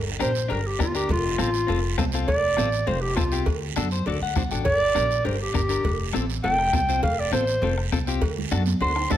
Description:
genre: latin, cumbia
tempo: 202 BPM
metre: 4/4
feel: straight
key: unclear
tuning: A4 = 439 Hz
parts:
  - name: upright bass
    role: bass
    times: 0.0-9.2 s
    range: F1 to F#2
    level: -27 LUFS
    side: equal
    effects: none
  - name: warm clarinet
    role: melody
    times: 0.2-9.2 s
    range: F4 to C6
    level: -24 LUFS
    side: right 1 dB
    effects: none
  - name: clean electric guitar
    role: accompaniment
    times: 0.2-9.2 s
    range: C4 to G5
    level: -30 LUFS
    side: left 8 dB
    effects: none
  - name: bombo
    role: percussion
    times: 0.2-9.2 s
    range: none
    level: -29 LUFS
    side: left 2 dB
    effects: none
  - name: congas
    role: percussion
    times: 0.2-9.2 s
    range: none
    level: -34 LUFS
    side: right 8 dB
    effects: none
  - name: guiro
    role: percussion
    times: 0.2-9.2 s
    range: none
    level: -36 LUFS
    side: right 10 dB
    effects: none
  - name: cowbell and timbales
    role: percussion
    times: 0.5-9.2 s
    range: none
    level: -35 LUFS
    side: right 4 dB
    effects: none
room: light reverb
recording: close, detailed microphones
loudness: -21 LUFS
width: side -11 dB against mid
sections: 0.0-9.2 A section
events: clarinet solo 0.0-9.2; clean electric guitar fill 3.8-4.7; drum fill 8.5-9.2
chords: 0.0 Gm; 1.1 F; 3.5 D7; 4.7 Gm; 5.8 F; 8.2 D7

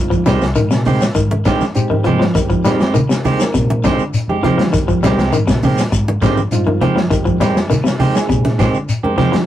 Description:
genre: afrobeat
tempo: 101 BPM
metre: 4/4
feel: straight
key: F dorian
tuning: A4 = 439 Hz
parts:
  - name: reed electric piano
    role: accompaniment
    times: 0.0-9.5 s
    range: Ab3 to Bb4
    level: -22 LUFS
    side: right 1 dB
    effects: overdrive
  - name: vintage muted fingered electric bass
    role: bass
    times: 0.0-9.5 s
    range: C2 to D3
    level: -20 LUFS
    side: equal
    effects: none
  - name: electric guitar at the edge of break-up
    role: arpeggios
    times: 0.1-9.4 s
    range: C3 to G3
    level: -19 LUFS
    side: left 2 dB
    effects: spring reverb
  - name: crunchy breakbeat drum kit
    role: drums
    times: 0.1-9.5 s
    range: hi-hat, kick drum, snare drum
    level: -18 LUFS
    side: equal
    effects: none
  - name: shekere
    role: percussion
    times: 0.1-9.0 s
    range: none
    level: -21 LUFS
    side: left 3 dB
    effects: none
  - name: clean electric guitar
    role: stabs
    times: 0.3-9.4 s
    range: Eb3 to G4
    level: -18 LUFS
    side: right 3 dB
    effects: none
  - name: congas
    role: percussion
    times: 0.3-9.3 s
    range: none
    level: -19 LUFS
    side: right 1 dB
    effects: none
room: moderate booth ambience, RT60 0.2 s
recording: rough rehearsal-room recording, warm saturation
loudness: -12 LUFS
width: side -12 dB against mid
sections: 0.0-9.5 A section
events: none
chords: 0.0 Fm9

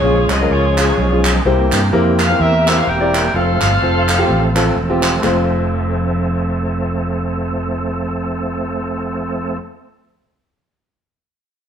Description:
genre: uptempo gospel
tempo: 127 BPM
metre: 4/4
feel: swing 57% on 8ths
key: F major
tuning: A4 = 439 Hz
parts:
  - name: warm saxophone section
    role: melody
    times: 0.0-4.8 s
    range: F4 to G5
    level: -18 LUFS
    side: left 1 dB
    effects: slapback echo
  - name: warm upright piano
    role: accompaniment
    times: 0.0-9.6 s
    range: F2 to D5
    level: -20 LUFS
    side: left 2 dB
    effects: none
  - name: bright tonewheel organ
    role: sustained chords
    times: 0.0-9.6 s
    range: E3 to A4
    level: -21 LUFS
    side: right 2 dB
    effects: chorus vibrato, fast rotary speaker
  - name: fingered electric bass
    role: bass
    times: 0.0-9.6 s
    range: E1 to G2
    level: -19 LUFS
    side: right 1 dB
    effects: none
  - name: group handclap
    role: percussion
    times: 0.3-5.5 s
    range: none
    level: -21 LUFS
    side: right 2 dB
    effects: none
room: wet stone room reverb, RT60 1.0 s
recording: band playing live in one room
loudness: -14 LUFS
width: side -8 dB against mid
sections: 0.0-5.2 A section; 5.2-9.0 B section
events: none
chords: 0.0 Db; 1.5 C7; 3.3 F

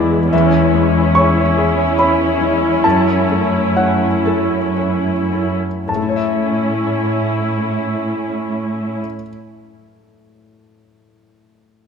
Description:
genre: cinematic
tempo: 53-78 BPM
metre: 3/4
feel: rubato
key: A major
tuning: A4 = 440 Hz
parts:
  - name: clear grand piano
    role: accompaniment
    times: 0.0-11.9 s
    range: E2 to C#6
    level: -18 LUFS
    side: left 2 dB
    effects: none
  - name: muted studio viola section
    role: accompaniment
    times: 0.0-9.0 s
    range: G#3 to E4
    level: -18 LUFS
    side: right 1 dB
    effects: none
  - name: concert harp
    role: arpeggios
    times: 0.0-9.8 s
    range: E2 to E5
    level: -24 LUFS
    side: left 7 dB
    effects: none
  - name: muted chamber cello section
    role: bass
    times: 0.0-9.0 s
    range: E2 to A2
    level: -21 LUFS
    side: right 3 dB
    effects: none
room: wet scoring stage reverb, RT60 2.0 s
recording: none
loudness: -14 LUFS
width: side -6 dB against mid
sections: 0.0-5.9 A section; 5.9-9.2 B section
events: slowing down 0.0-5.9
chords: 0.3 C#m/E; 2.8 F#m7; 5.9 A

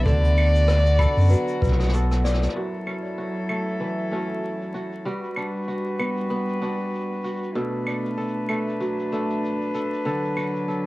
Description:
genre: folktronica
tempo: 96 BPM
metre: 4/4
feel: swing 56% on 16ths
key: B minor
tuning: A4 = 440 Hz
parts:
  - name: dark violin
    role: melody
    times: 0.0-1.9 s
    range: D5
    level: -25 LUFS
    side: equal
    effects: cassette tape, tape echo
  - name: celesta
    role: second line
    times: 0.0-2.6 s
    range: B4 to B5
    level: -33 LUFS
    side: left 6 dB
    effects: tape echo
  - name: dark string quartet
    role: sustained chords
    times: 0.0-10.9 s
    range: D3 to B4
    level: -28 LUFS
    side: equal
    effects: none
  - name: kora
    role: arpeggios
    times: 0.0-10.9 s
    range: F#2 to A4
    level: -29 LUFS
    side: equal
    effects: low-pass filter, tape echo
  - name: warm sub bass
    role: bass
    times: 0.0-2.5 s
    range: B1 to F#2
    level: -18 LUFS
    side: equal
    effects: none
  - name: kick drum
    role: drums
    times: 0.1-1.8 s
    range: none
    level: -25 LUFS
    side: equal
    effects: cassette tape
  - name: shaker, claves and rim click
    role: drums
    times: 0.1-10.8 s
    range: none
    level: -33 LUFS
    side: equal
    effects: low-pass filter on snare, cassette tape, low-pass filter on perc, low-pass filter on room
room: light reverb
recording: home recording on cassette, vinyl crackle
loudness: -22 LUFS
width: side -19 dB against mid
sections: 0.0-2.6 A section; 2.6-10.9 B section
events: drum fill 2.1-2.6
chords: 0.0 Bm7; 2.6 F#m7; 5.1 Gmaj7; 7.6 Bm7; 10.1 D6

